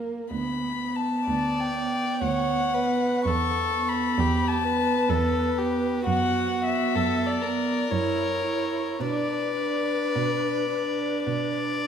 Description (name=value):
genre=classical, slow romantic movement for string quartet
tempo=62 BPM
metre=3/4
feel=uneven beats, rubato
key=B minor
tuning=A4 = 439 Hz
part: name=dark viola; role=accompaniment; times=0.0-11.9 s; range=A#3 to E4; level=-28 LUFS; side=right 4 dB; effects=none
part: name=warm cello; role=bass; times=0.0-11.9 s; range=D2 to B2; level=-31 LUFS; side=right 4 dB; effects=none
part: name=dark violin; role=melody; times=0.3-11.9 s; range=B4 to C#6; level=-27 LUFS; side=left 6 dB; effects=none
part: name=rich violin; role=second line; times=1.3-11.9 s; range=F#4 to D5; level=-29 LUFS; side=equal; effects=none
room=moderate scoring stage reverb, RT60 1.8 s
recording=minimal, uncompressed stereo recording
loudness=-23 LUFS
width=side -8 dB against mid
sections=0.0-11.9 A section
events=none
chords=0.3 Bm/D; 3.3 Emadd11; 6.1 B5/F#; 7.9 F#7; 9.0 Bm